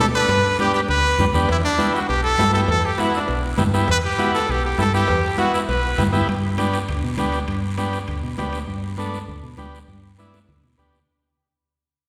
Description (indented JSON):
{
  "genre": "latin, cumbia",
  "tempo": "200 BPM",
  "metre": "4/4",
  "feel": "straight",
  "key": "G major",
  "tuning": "A4 = 439 Hz",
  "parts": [
    { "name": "bright trumpet", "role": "melody", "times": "0.0-6.1 s", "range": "D4 to B4", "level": "-23 LUFS", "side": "equal", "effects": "none" },
    { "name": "combo organ", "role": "accompaniment", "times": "0.0-11.0 s", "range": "B3 to A4", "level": "-27 LUFS", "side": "equal", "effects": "none" },
    { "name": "fingered electric bass", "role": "bass", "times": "0.0-11.0 s", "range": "B1 to B2", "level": "-26 LUFS", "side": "equal", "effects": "none" },
    { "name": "guiro", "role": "percussion", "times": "0.1-11.1 s", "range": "none", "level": "-39 LUFS", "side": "equal", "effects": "none" },
    { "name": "congas", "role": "percussion", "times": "0.3-11.0 s", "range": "none", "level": "-31 LUFS", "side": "equal", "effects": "none" },
    { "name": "cowbell and timbales", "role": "percussion", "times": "0.3-8.7 s", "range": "none", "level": "-34 LUFS", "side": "equal", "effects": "none" }
  ],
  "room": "wet concert hall reverb, RT60 2.0 s",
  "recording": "recorded in a church or concert hall",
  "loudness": "-20 LUFS",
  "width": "mono",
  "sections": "0.0-6.3 A section; 6.3-11.1 B section",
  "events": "fade-out 6.3-11.1; drum fill 9.9-11.1",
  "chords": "0.0 G; 1.5 Em; 6.3 G",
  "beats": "0.00 | 0.29 0.59 0.89 1.19 | 1.49 1.79 2.09 2.39 | 2.69 2.99 3.29 3.59 | 3.88 4.18 4.48 4.78 | 5.08 5.38 5.68 5.98 | 6.28 6.58 6.88 7.18 | 7.48 7.78 8.08 8.38 | 8.68 8.98 9.28 9.58 | 9.88 10.18 10.48 10.78"
}